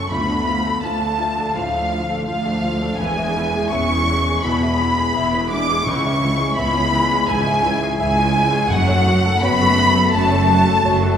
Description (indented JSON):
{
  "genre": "cinematic",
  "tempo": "84 BPM",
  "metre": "4/4",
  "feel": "rubato",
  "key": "F# minor",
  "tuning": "A4 = 441 Hz",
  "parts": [
    { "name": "rich studio violin section", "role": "melody", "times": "0.0-11.2 s", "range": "F5 to D6", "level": "-24 LUFS", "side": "left 1 dB", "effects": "none" },
    { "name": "large flute ensemble", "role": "second line", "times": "0.0-11.2 s", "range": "F5 to D6", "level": "-22 LUFS", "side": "left 1 dB", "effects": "none" },
    { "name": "warm symphonic violin section", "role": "second line", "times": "0.0-11.2 s", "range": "F5 to D6", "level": "-26 LUFS", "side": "left 1 dB", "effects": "none" },
    { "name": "rich symphonic viola section", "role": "accompaniment", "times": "0.0-11.2 s", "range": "E3 to A4", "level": "-29 LUFS", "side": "right 2 dB", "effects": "none" },
    { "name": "warm concert grand piano", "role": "accompaniment", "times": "0.0-11.2 s", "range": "C#2 to E5", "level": "-25 LUFS", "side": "left 1 dB", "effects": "none" },
    { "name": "dark French horn section", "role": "sustained chords", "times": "0.0-11.2 s", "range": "F3 to D4", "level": "-24 LUFS", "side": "left 3 dB", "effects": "none" },
    { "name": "clear symphonic cello section", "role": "bass", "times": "0.0-11.2 s", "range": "C#2 to F#2", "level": "-24 LUFS", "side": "right 2 dB", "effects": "none" },
    { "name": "rich symphonic double bass section", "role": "bass", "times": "0.0-11.2 s", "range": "E1 to D2", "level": "-25 LUFS", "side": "right 2 dB", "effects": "none" },
    { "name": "timpani", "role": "percussion", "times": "5.9-9.8 s", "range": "F#2 to C#3", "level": "-26 LUFS", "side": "equal", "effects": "none" }
  ],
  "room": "wet recital hall reverb, RT60 1.6 s",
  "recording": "recorded in a church or concert hall",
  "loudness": "-16 LUFS",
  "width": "side -8 dB against mid",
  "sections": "0.0-11.2 A section",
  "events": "none",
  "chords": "0.1 Dm; 3.0 E; 5.9 C#m; 8.7 F#m"
}